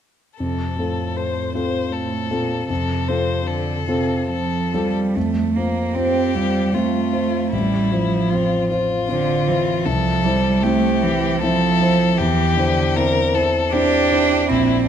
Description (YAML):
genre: classical, slow romantic movement for piano trio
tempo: 77 BPM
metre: 3/4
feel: rubato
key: F major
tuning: A4 = 440 Hz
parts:
  - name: rich violin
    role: melody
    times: 0.4-14.9 s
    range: E4 to C5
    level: -24 LUFS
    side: left 7 dB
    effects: none
  - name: warm cello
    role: second line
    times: 0.4-14.9 s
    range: A2 to D4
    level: -20 LUFS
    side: right 5 dB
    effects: none
  - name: dark concert grand piano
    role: accompaniment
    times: 0.4-14.9 s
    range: A1 to C5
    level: -21 LUFS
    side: left 2 dB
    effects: none
room: wet recital hall reverb, RT60 1.6 s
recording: none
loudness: -17 LUFS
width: side -9 dB against mid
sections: 0.4-5.2 A section; 5.2-14.9 B section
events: none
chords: 0.4 F; 7.5 F/A; 9.9 C; 12.2 C/E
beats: | 0.39 1.17 1.94 | 2.70 3.48 4.30 | 5.16 5.96 6.74 | 7.53 8.31 9.10 | 9.87 10.64 11.42 | 12.19 12.96 13.73 | 14.48